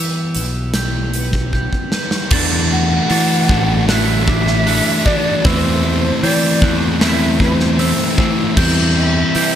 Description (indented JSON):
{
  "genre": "post-rock",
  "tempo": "77 BPM",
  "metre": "4/4",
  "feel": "straight",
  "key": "unclear",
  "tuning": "A4 = 440 Hz",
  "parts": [
    { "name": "glockenspiel with rubber mallets", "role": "arpeggios", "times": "0.0-9.6 s", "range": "D6 to A6", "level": "-26 LUFS", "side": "right 5 dB", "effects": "analog delay" },
    { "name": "twelve-string electric guitar", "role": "arpeggios", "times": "0.0-9.6 s", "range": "E2 to D4", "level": "-26 LUFS", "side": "left 3 dB", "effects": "analog chorus, analog delay" },
    { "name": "growling fingered electric bass", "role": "bass", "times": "0.0-9.6 s", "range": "A1 to E3", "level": "-19 LUFS", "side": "equal", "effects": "overdrive" },
    { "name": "huge arena drum kit", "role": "drums", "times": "0.3-9.5 s", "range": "crash cymbal, hi-hat, kick drum, snare drum", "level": "-19 LUFS", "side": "equal", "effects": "none" },
    { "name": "fuzz guitar", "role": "riff", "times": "2.3-9.6 s", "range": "E3 to F#4", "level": "-17 LUFS", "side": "left 1 dB", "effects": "distortion" },
    { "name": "breathy mellow shakuhachi", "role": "melody", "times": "2.7-9.6 s", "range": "C5 to F#5", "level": "-21 LUFS", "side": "right 1 dB", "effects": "analog delay" }
  ],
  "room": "light reverb, studio reverb",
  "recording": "none",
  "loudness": "-13 LUFS",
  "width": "side -10 dB against mid",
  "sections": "0.0-2.3 A section; 2.3-9.6 B section",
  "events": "drum fill 1.5-2.3",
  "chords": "0.0 Em; 2.3 D; 5.5 Am7/E; 8.6 C/E",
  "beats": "0.75 1.54 | 2.32 3.10 3.89 4.67 | 5.45 6.23 7.01 7.79 | 8.57 9.35"
}